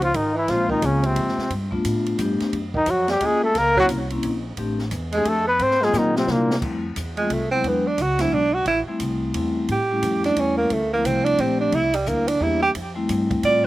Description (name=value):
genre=jazz, small-group swing and bop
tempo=176 BPM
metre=3/4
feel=swing 63% on 8ths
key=F major from 6.6 s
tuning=A4 = 440 Hz
part: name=mellow trumpet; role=melody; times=0.0-6.6 s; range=Bb3 to C5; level=-21 LUFS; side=left 1 dB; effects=slapback echo
part: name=warm tenor saxophone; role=second line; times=0.0-13.7 s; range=Bb2 to D5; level=-22 LUFS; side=right 2 dB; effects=slapback echo
part: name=upright bass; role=bass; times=0.0-13.7 s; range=Ab1 to C3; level=-28 LUFS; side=equal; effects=none
part: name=open jazz drum kit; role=drums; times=0.0-13.5 s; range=crash cymbal, hi-hat, kick drum, ride cymbal, snare drum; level=-33 LUFS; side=right 1 dB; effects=none
part: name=vibraphone with medium hard mallets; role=accompaniment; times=0.5-13.7 s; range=F3 to G4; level=-25 LUFS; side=left 3 dB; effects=none
room=little or no reverb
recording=recorded outdoors, with no room sound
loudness=-19 LUFS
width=side -16 dB against mid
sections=0.0-6.6 A section; 6.6-13.7 B section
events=drum fill 5.9-6.6; tenor saxophone solo 6.6-13.7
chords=0.5 Bbm7; 1.5 G9; 2.5 Gbmaj9; 3.6 Gb7#11 (rootless); 4.6 F69; 5.6 Ab13; 6.3 C7; 6.6 Fmaj7; 7.6 E7; 8.7 Am7; 9.7 A7; 10.7 Dm7; 11.7 C7; 12.8 Fmaj7